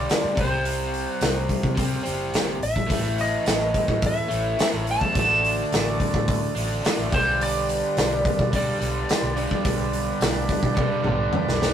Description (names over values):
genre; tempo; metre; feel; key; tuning
blues rock power trio and southern rock; 107 BPM; 4/4; straight; unclear; A4 = 443 Hz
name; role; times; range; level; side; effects
lightly driven lead guitar; melody; 0.0-11.3 s; C5 to A5; -25 LUFS; equal; wah
overdriven electric guitar; riff; 0.0-11.6 s; G2 to D4; -28 LUFS; equal; none
vintage muted fingered electric bass; bass; 0.0-11.7 s; F#1 to C3; -28 LUFS; equal; none
big rock drum kit; drums; 0.1-11.7 s; hi-hat, kick drum, snare drum, toms; -25 LUFS; equal; none
tonewheel organ; sustained chords; 2.9-11.7 s; D4 to D5; -30 LUFS; right 3 dB; slow rotary speaker, overdrive
room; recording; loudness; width
moderate studio reverb, RT60 0.6 s; rough rehearsal-room recording, tube saturation; -20 LUFS; side -9 dB against mid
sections
0.0-11.7 A section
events
drum fill 10.8-11.7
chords
0.4 C5; 2.9 A; 5.1 D/A; 7.1 G/B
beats
0.09 | 0.65 1.21 1.77 2.33 | 2.89 3.46 4.02 4.58 | 5.14 5.71 6.27 6.83 | 7.39 7.96 8.52 9.08 | 9.65 10.21 10.77 11.33